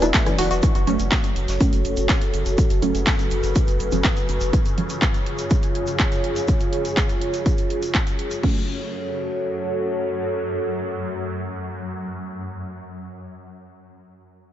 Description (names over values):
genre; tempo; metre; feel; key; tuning
melodic techno; 123 BPM; 4/4; straight; F# minor; A4 = 440 Hz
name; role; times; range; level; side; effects
dark analog pad; sustained chords; 0.0-12.4 s; E#4 to D5; -26 LUFS; right 1 dB; chorus, sidechain pumping
woody wave-folded pluck; arpeggios; 0.0-0.6 s; E3 to F#4; -27 LUFS; equal; chorus, sidechain pumping, analog delay
filtered dub chord stab; stabs; 0.0-12.4 s; E#3 to E4; -27 LUFS; right 2 dB; phaser, sidechain pumping, analog delay
round analog bass; bass; 0.0-4.5 s; E1 to F#1; -25 LUFS; equal; sidechain pumping
techno drum kit; drums; 0.0-8.5 s; crash cymbal, handclaps, hi-hat, rim click; -27 LUFS; equal; sidechain pumping on hats, sidechain pumping on cymbals
egg shaker; percussion; 0.0-8.4 s; none; -40 LUFS; left 1 dB; none
electronic kick drum; drums; 0.1-8.5 s; none; -20 LUFS; equal; none
tight metal drum kit; drums; 0.1-4.4 s; hi-hat, shaker, snare drum; -40 LUFS; equal; none
swarming drone; drone; 2.0-12.4 s; F#2 to F#3; -32 LUFS; left 1 dB; built-in reverb, phaser, sidechain pumping
room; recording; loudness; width
moderate church reverb, RT60 3.6 s; dreamy mix soaked in reverb, nothing above 7.7 kHz; -19 LUFS; side -11 dB against mid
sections
0.6-8.4 A section; 8.4-12.3 B section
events
filter sweep on synth stab 0.6-8.4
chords
0.0 Esus2; 0.6 F#m; 4.5 C#; 8.4 F#m